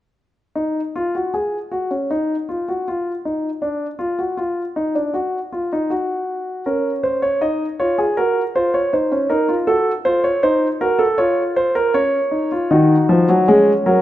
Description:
classical, baroque-style 3-part fugue for grand piano; 79 BPM; 4/4; straight; A4 = 440 Hz
warm grand piano; solo; 0.6-14.0 s; Eb3 to Eb5; -16 LUFS; equal
moderate recital hall reverb, RT60 1.8 s; -16 LUFS; side -13 dB against mid
0.6-14.0 A section
0.6 N.C.; 6.7 Bbm/Db; 8.2 Cm7b5; 9.7 Adim7; 11.2 Bbm/F (rootless); 12.7 Ebm

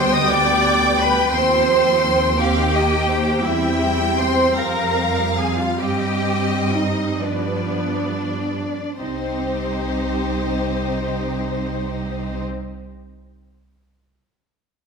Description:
classical, slow romantic movement for string orchestra; 31-59 BPM (dotted quarters); 6/8; rubato; C minor; A4 = 440 Hz
rich studio violin section; melody; 0.0-12.4 s; C5 to Eb6; -25 LUFS; left 5 dB
rich studio violin section; second line; 0.0-12.4 s; G4 to G5; -25 LUFS; left 3 dB
rich studio viola section; accompaniment; 0.0-12.4 s; Eb3 to Eb4; -25 LUFS; equal
rich studio cello section; bass; 0.0-12.4 s; C4 to Eb5; -22 LUFS; right 2 dB
warm studio double bass section; bass; 0.0-12.4 s; C2 to G2; -25 LUFS; right 3 dB
wet scoring stage reverb, RT60 1.6 s; -17 LUFS; side -5 dB against mid
0.0-9.0 A section; 9.0-14.9 B section
slowing down 2.4-9.0
0.0 G/D; 1.3 Cm/Eb; 3.4 C/E; 4.6 Fm; 5.8 Cm/G; 7.2 G7; 9.0 Cm

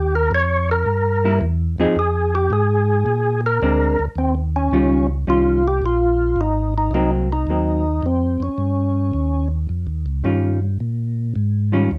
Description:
jazz; 109 BPM; 4/4; swing 68% on 8ths; Eb mixolydian; A4 = 439 Hz
percussive tonewheel organ; melody; 0.0-9.5 s; C4 to Db5; -22 LUFS; equal; slow rotary speaker, overdrive, chorus vibrato
mellow tonewheel organ; bass; 0.0-12.0 s; Ab1 to Bb2; -23 LUFS; equal; slow rotary speaker
hollow-body jazz guitar; accompaniment; 1.2-11.9 s; Eb3 to Ab4; -22 LUFS; equal
light reverb; -19 LUFS; mono
0.0-4.2 A section; 4.2-12.0 B section
tonewheel organ solo 0.0-4.2
0.0 Ebsus2; 0.9 C7; 2.0 Fm; 3.1 Bb9; 4.2 Eb9; 6.4 Ab9; 8.6 Eb9; 10.8 Bbm7

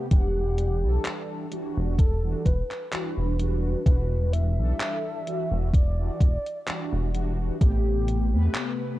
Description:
vaporwave; 64 BPM; 4/4; swing 54% on 16ths; A4 = 441 Hz
mellow synth brass; accompaniment; 0.0-9.0 s; C3 to F#5; -32 LUFS; equal; phaser, lush chorus
warm velvety synth lead; melody; 0.1-9.0 s; G4 to E5; -33 LUFS; equal; chorus, tape echo
chorused synth bass; bass; 0.1-8.5 s; E1 to E2; -25 LUFS; equal; tube saturation
electronic kick drum; drums; 0.1-7.8 s; -20 LUFS; equal
gated 80s digital drum machine; drums; 0.1-8.8 s; handclaps, hi-hat; -34 LUFS; equal; gated reverb
digital ambience; dark, warm production, cassette tape; -23 LUFS; side -16 dB against mid
0.0-9.0 A section
0.1 Em9; 7.6 Am9

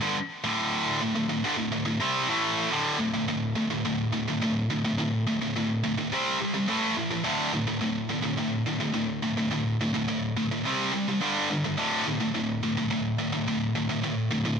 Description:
metal; 106 BPM; 4/4; straight; A4 = 443 Hz
heavy high-gain guitar; solo; 0.0-14.6 s; D2 to C4; -25 LUFS; equal; distortion, digital delay
light reverb, digital ambience; -25 LUFS; side -6 dB against mid
0.0-2.7 A section; 2.7-14.6 B section
0.0 D5; 6.1 C5; 6.7 A5; 7.2 D5; 10.6 C5; 11.2 G5; 11.8 D5

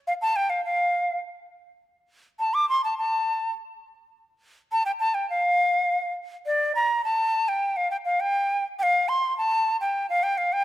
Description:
andean folk; 104 BPM; 2/4; straight; A4 = 445 Hz
bright large quena; solo; 0.1-10.6 s; D5 to D6; -22 LUFS; equal
moderate scoring stage reverb, RT60 1.7 s; -22 LUFS; side -14 dB against mid
0.0-6.5 A section; 6.5-10.6 B section

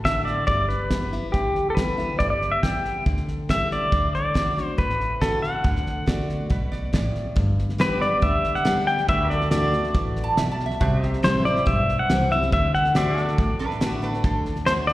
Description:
honky-tonk and classic country; 139 BPM; 4/4; straight; G major; A4 = 444 Hz
picked steel-string acoustic guitar; accompaniment; 0.0-14.9 s; G2 to G4; -27 LUFS; left 1 dB; slapback echo
upright bass; bass; 0.0-14.9 s; G1 to D2; -28 LUFS; equal
damped 70s drum kit; drums; 0.0-14.9 s; hi-hat, kick drum, snare drum; -25 LUFS; equal
pedal steel guitar; melody; 0.1-14.9 s; G4 to G5; -23 LUFS; left 1 dB; slapback echo
lap resonator guitar; second line; 6.1-7.2, 10.2-14.6 s; D4 to A5; -30 LUFS; right 3 dB; slapback echo
pedal steel guitar; sustained chords; 7.8-14.9 s; F#4 to F#5; -33 LUFS; right 2 dB; lush chorus
light reverb, small room ambience; live gig heard through the venue's PA, recital hall reverb; -20 LUFS; side -16 dB against mid
0.0-7.4 A section; 7.4-14.9 B section
0.5 G6; 3.9 D; 7.4 G; 9.1 D; 10.8 C; 12.5 D

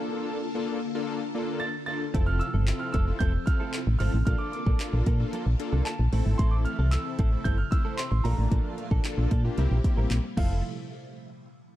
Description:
dance-pop; 113 BPM; 4/4; straight; A4 = 440 Hz
bright concert grand piano; melody; 0.0-10.6 s; F5 to A6; -36 LUFS; right 3 dB
big bright polysynth; accompaniment; 0.0-10.6 s; A3 to C5; -34 LUFS; left 2 dB; chorus, sidechain pumping
phased string machine; sustained chords; 0.0-10.6 s; Bb2 to A4; -37 LUFS; left 1 dB; ensemble chorus, phaser, sidechain pumping
direct-recorded clean electric guitar; riff; 2.1-10.5 s; F3 to Bb4; -38 LUFS; right 6 dB; ensemble chorus
solid FM bass; bass; 2.1-10.6 s; E1 to Bb2; -25 LUFS; equal; sidechain pumping
deep house drum kit; drums; 2.1-10.5 s; crash cymbal, handclaps, hi-hat, kick drum; -27 LUFS; equal
little or no reverb; dark, warm production; -24 LUFS; side -14 dB against mid
0.0-10.6 A section; 10.6-11.8 B section
0.0 Bbmaj7; 2.1 Fmaj7; 4.3 Bbmaj7; 6.1 Am; 8.2 Bbmaj7; 9.6 C7; 10.4 Fmaj7; 10.6 N.C.

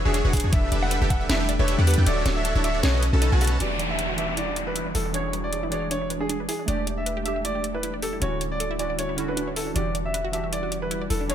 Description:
future bass; 156 BPM; 4/4; swing 55% on 16ths, half-time; E dorian; A4 = 440 Hz
ethereal airy pad; sustained chords; 0.0-11.3 s; D3 to F#5; -34 LUFS; left 2 dB; ensemble chorus, built-in reverb, sidechain pumping
warm 808-style bass; bass; 0.0-11.3 s; D1 to E2; -26 LUFS; equal; sidechain pumping
clear concert grand piano; melody; 0.1-11.3 s; F#4 to F#5; -30 LUFS; equal; vintage 12-bit sampler grit, sidechain pumping, dub echo
wide unison pluck; arpeggios; 0.1-11.3 s; C#4 to E5; -34 LUFS; right 3 dB; sidechain pumping, ping-pong delay
dense compressed supersaw; riff; 0.1-3.6 s; C#4 to A5; -27 LUFS; right 1 dB; vintage 12-bit sampler grit, sidechain pumping, low-pass filter
trap drum kit; drums; 0.1-11.3 s; hi-hat, snare drum; -30 LUFS; equal
electronic kick drum; drums; 0.3-1.2 s; -23 LUFS; equal; overdrive
glassy digital keys; accompaniment; 3.6-11.3 s; D3 to C#5; -33 LUFS; right 4 dB; chorus, sidechain pumping
downlifter; sound effects; 3.6-6.7 s; -32 LUFS; equal
light reverb, digital ambience; -22 LUFS; side -10 dB against mid
0.0-3.6 A section; 3.6-11.3 B section
drop 0.0-3.6; kick drops out 2.1-3.6
0.0 E13; 0.5 A9sus4/E; 2.1 Dmaj9; 2.8 B9; 3.6 Em9; 4.9 E13; 6.7 A7sus4/E; 8.2 Dmaj9; 9.8 Em9

